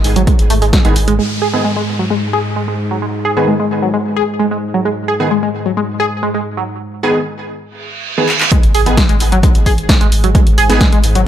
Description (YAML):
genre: driving peak-time techno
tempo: 131 BPM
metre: 4/4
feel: straight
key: G# minor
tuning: A4 = 442 Hz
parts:
  - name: warm sub bass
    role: bass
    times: 0.0-1.2, 8.6-11.3 s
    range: G#1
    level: -15 LUFS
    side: equal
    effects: overdrive, sidechain pumping, low-pass filter
  - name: analog drone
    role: drone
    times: 0.0-11.3 s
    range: G#2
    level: -22 LUFS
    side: left 1 dB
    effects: chorus, sidechain pumping
  - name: punchy analog drum machine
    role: drums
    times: 0.0-1.2, 8.3-11.2 s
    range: handclaps, hi-hat, snare drum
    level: -18 LUFS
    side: equal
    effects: overdrive, sidechain pumping on hats
  - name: tight sequenced synth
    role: riff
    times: 0.2-11.2 s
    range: F#3 to G#4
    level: -17 LUFS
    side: equal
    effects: chorus, sidechain pumping, tape echo
  - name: electronic kick drum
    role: drums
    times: 0.3-0.8, 8.5-10.9 s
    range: none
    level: -12 LUFS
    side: equal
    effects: overdrive
  - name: rave stab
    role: stabs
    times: 0.8-10.8 s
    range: D#3 to G#4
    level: -18 LUFS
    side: right 1 dB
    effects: chorus, built-in reverb, sidechain pumping, digital delay
  - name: downlifter, reverse cymbal and impact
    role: sound effects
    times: 1.2-4.9, 7.8-10.3 s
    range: none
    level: -23 LUFS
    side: right 2 dB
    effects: none
room: light reverb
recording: none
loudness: -11 LUFS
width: side -10 dB against mid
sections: 0.0-1.2 A section; 1.2-8.5 B section; 8.5-11.3 C section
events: filter sweep on synth arpeggio sound 0.0-1.2; reverse cymbal 7.8-8.5; drum fill 8.3; drop 8.5-11.3; impact 8.5-10.3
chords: 0.0 G#m